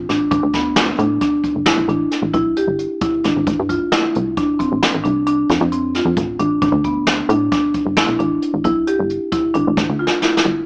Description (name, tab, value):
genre	progressive instrumental, band music in an uneven meter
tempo	133 BPM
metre	7/4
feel	straight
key	unclear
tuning	A4 = 440 Hz
part	marimba with medium hard mallets	arpeggios	0.0-10.6 s	B3 to G4	-20 LUFS	equal	none
part	plucky analog bass	bass	0.0-10.6 s	G1 to A2	-24 LUFS	equal	none
part	jazz brush drum kit	drums	0.1-10.5 s	hi-hat, kick drum, snare drum	-23 LUFS	equal	none
room	light reverb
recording	small speaker sound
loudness	-18 LUFS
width	mono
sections	0.0-10.7 A section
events	drum fill 9.8-10.7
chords	0.3 Em7; 3.5 Dm7/A; 6.6 Em7; 9.8 A7(no3)